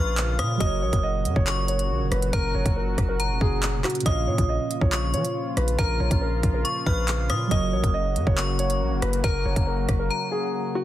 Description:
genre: hip hop, drill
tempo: 139 BPM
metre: 4/4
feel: half-time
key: unclear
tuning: A4 = 440 Hz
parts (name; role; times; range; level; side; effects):
- dark grand piano; melody; 0.0-10.8 s; Gb4 to Eb5; -30 LUFS; equal; none
- metallic FM bell; second line; 0.0-10.5 s; Bb5 to F6; -31 LUFS; left 2 dB; chorus, ping-pong delay
- warbly lo-fi synth keys; accompaniment; 0.0-10.8 s; Bb2 to F5; -34 LUFS; right 3 dB; chorus
- sweeping resonant pad; sustained chords; 0.0-10.8 s; Bb2 to Gb4; -32 LUFS; equal; lush chorus
- hard-hitting 808-style bass; bass; 0.0-10.1 s; F1 to F3; -26 LUFS; equal; none
- drill drum kit; drums; 0.2-10.0 s; handclaps, hi-hat, kick drum, rim click; -25 LUFS; equal; none
room: light reverb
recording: dense, heavily limited modern master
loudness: -21 LUFS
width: side -13 dB against mid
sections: 0.0-10.8 A section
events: break 10.1-10.8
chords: 0.0 Bbm; 0.6 Gb; 4.1 Bbm; 7.5 Gb

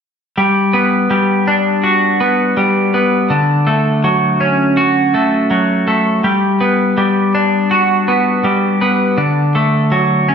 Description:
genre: rock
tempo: 82 BPM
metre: 4/4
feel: straight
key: G lydian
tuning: A4 = 440 Hz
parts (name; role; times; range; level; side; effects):
- twelve-string electric guitar; arpeggios; 0.4-10.3 s; D3 to F#4; -11 LUFS; equal; slapback echo
room: wet concert hall reverb, RT60 1.9 s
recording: none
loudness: -11 LUFS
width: side -7 dB against mid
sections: 0.4-10.3 A section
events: none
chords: 0.4 Gmaj7; 3.3 Dmaj7; 6.2 Gmaj7; 9.2 D

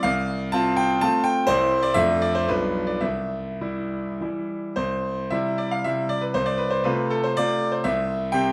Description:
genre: classical, romantic triple-time dance for piano with dotted rhythms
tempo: 98-134 BPM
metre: 3/4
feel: rubato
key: C major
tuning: A4 = 443 Hz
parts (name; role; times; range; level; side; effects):
- bright concert grand piano; solo; 0.0-8.5 s; B1 to A5; -24 LUFS; equal; none
room: wet recital hall reverb, RT60 1.4 s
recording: none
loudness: -24 LUFS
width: mono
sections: 0.0-4.8 A section; 4.8-8.5 B section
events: none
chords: 0.0 F/C; 1.5 C; 2.0 Dm/F; 2.5 G7/B; 3.0 C; 6.3 F/C; 7.8 C

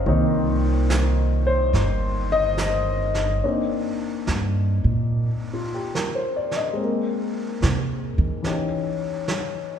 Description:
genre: jazz ballad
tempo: 72 BPM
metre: 4/4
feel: swing 68% on 8ths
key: C minor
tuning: A4 = 440 Hz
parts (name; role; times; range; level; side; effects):
- warm grand piano; accompaniment; 0.0-9.8 s; Eb3 to F5; -24 LUFS; left 3 dB; none
- upright bass; bass; 0.1-8.6 s; G1 to Eb3; -22 LUFS; right 1 dB; none
- vintage brush drum kit; drums; 0.1-9.8 s; brushed snare drum, hi-hat, snare drum; -31 LUFS; right 3 dB; none
room: moderate concert hall reverb, RT60 1.9 s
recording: recorded in a church or concert hall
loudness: -21 LUFS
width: side -8 dB against mid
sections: 0.0-3.4 A section; 3.4-9.8 A section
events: upright bass solo 3.4-9.8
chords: 0.0 Cm9; 6.8 Bbsus2; 8.4 Eb7b9

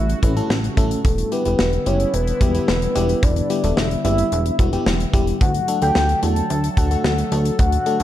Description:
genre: synth-pop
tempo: 110 BPM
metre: 4/4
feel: straight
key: E dorian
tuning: A4 = 440 Hz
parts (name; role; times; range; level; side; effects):
- soft octave-layered synth lead; melody; 0.0-8.0 s; A4 to A5; -23 LUFS; left 1 dB; chorus, tremolo, ping-pong delay
- sweeping resonant pad; sustained chords; 0.0-8.0 s; C#3 to A4; -28 LUFS; equal; chorus
- chorused synth bass; bass; 0.0-8.0 s; E1 to E2; -21 LUFS; equal; none
- modern studio drum kit; drums; 0.1-8.0 s; hi-hat, kick drum, snare drum; -21 LUFS; equal; none
- FM electric piano; accompaniment; 0.2-8.0 s; G3 to B4; -25 LUFS; left 2 dB; chorus
room: moderate recital hall reverb, RT60 1.5 s, studio ambience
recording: dark, warm production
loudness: -16 LUFS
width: side -12 dB against mid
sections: 0.0-8.0 A section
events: none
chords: 0.0 A7; 1.0 Em7; 5.4 D

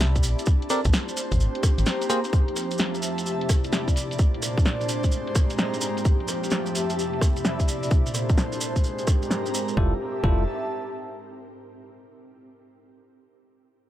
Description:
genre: UK garage, two-step garage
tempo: 129 BPM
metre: 4/4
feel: swing 65% on 16ths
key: F major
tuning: A4 = 440 Hz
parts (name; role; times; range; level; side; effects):
- ethereal airy pad; sustained chords; 0.0-10.0 s; C4 to G4; -33 LUFS; left 1 dB; ensemble chorus, built-in reverb, sidechain pumping
- organ-like FM bass; bass; 0.0-1.8, 9.8-10.5 s; F1 to C2; -22 LUFS; equal; none
- house drum kit; drums; 0.0-9.8 s; hi-hat, rim click, snare drum; -28 LUFS; equal; low-pass filter on hats, small room ambience, low-pass filter on snare
- maracas; percussion; 0.0-9.8 s; none; -34 LUFS; right 3 dB; none
- airy breathy pad; texture; 0.0-11.6 s; Bb2 to B5; -30 LUFS; equal; chorus, sidechain pumping
- electronic kick drum; drums; 0.2-10.4 s; none; -21 LUFS; equal; small room ambience
- bell-like tine electric piano; stabs; 0.7-2.2, 9.8-10.4 s; G3 to D5; -28 LUFS; equal; wide subtle chorus, dub echo
room: light reverb, digital ambience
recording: none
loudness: -22 LUFS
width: side -12 dB against mid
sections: 0.0-9.8 A section; 9.8-11.6 B section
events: filter sweep on drum 0.0-9.8; filter sweep on ambient pad 0.0-9.8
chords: 0.2 Bbmaj9; 1.2 Abmaj9; 2.3 Fmaj9; 3.3 Cmaj9; 4.0 Bbmaj9; 4.9 Abmaj9; 6.1 Fmaj9; 7.0 Cmaj9; 7.7 Bbmaj9; 8.6 Abmaj9; 9.8 Fmaj9

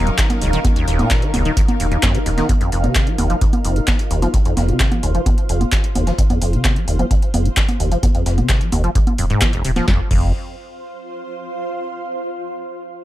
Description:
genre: acid house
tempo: 130 BPM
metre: 4/4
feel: straight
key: unclear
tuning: A4 = 440 Hz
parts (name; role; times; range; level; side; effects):
- bright chamber string section; sustained chords; 0.0-2.5 s; Gb3 to Bb4; -29 LUFS; left 1 dB; sidechain pumping
- acid bass, saw; riff; 0.0-10.3 s; F1 to F3; -21 LUFS; equal; tube saturation, ensemble chorus, tape echo
- warm sub bass; bass; 0.0-10.3 s; Eb1 to F1; -20 LUFS; equal; sidechain pumping
- granular cloud pad; texture; 0.0-11.7 s; Eb4 to F5; -27 LUFS; equal; built-in reverb, sidechain pumping
- booming analog drum machine; drums; 0.1-10.2 s; congas, crash cymbal, handclaps, hi-hat, snare drum; -22 LUFS; right 1 dB; overdrive
- breakbeat sampler-style drum kit; drums; 0.2-9.9 s; hi-hat, snare drum; -32 LUFS; equal; overdrive, sidechain pumping on hats, high-pass filter on hats, high-pass filter on snare, high-pass filter on room
- electronic kick drum; drums; 0.2-10.2 s; none; -18 LUFS; equal; overdrive
room: digital ambience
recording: none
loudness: -15 LUFS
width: side -14 dB against mid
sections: 0.0-2.5 A section; 2.5-9.9 B section; 9.9-11.7 C section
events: drop 0.0-2.5; fade-out on ambient pad 2.5-9.9; filter sweep on acid bass 2.5-9.9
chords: 0.0 Ebm7; 2.5 F7(no3); 9.9 F5

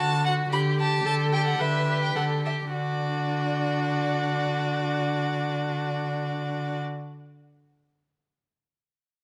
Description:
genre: quick classical-period movement for string quartet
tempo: 101-113 BPM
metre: 4/4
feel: rubato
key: D major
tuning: A4 = 440 Hz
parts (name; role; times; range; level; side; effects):
- rich violin; melody; 0.0-6.8 s; D5 to B5; -34 LUFS; equal; none
- rich violin; second line; 0.0-6.8 s; F#4 to G4; -32 LUFS; equal; none
- rich viola; accompaniment; 0.0-6.8 s; D4 to B4; -34 LUFS; equal; none
- warm cello; bass; 0.0-6.8 s; D3; -30 LUFS; equal; none
room: moderate stone room reverb, RT60 1.4 s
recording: none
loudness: -26 LUFS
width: mono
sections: 0.0-2.7 A section; 2.7-7.2 B section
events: slowing down 0.0-2.7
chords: 0.0 D; 0.5 G69/D; 2.7 D

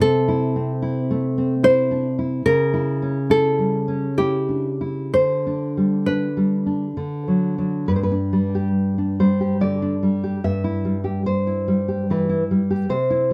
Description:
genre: romantic duo for nylon-string guitar and classical guitar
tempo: 59-75 BPM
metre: 3/4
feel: rubato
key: G major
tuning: A4 = 437 Hz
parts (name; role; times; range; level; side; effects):
- nylon-string guitar; melody; 0.0-7.4 s; G4 to C5; -23 LUFS; equal; none
- nylon-string guitar; accompaniment; 0.0-13.3 s; G2 to E5; -22 LUFS; equal; none
room: light reverb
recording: close, detailed microphones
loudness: -21 LUFS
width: mono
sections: 0.0-7.9 A section; 7.9-13.3 B section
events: none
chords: 0.0 Am/C; 2.5 C#dim7; 5.2 G/D; 7.0 D; 7.9 G; 10.4 Em/G

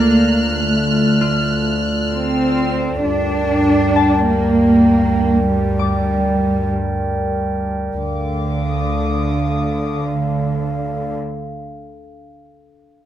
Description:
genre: cinematic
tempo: 98 BPM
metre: 4/4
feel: straight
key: D phrygian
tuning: A4 = 437 Hz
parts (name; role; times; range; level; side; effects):
- glass harmonica; sustained chords; 0.0-11.2 s; D4 to G5; -23 LUFS; equal; none
- dark studio cello section; bass; 0.0-11.2 s; D3 to D4; -18 LUFS; right 1 dB; none
- rich studio double bass section; bass; 0.0-11.2 s; D2 to G2; -22 LUFS; right 2 dB; none
- saturated sub bass; drone; 0.0-11.2 s; D2; -25 LUFS; left 1 dB; none
- concert harp; texture; 0.0-9.7 s; F4 to F6; -25 LUFS; left 8 dB; none
- warm studio violin section; texture; 0.0-2.7, 8.0-10.1 s; D6 to F#6; -24 LUFS; equal; none
room: light reverb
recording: none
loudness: -15 LUFS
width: side -11 dB against mid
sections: 0.0-7.9 A section; 7.9-10.4 B section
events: none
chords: 0.0 Dm; 3.0 Gm/D; 7.9 Dm

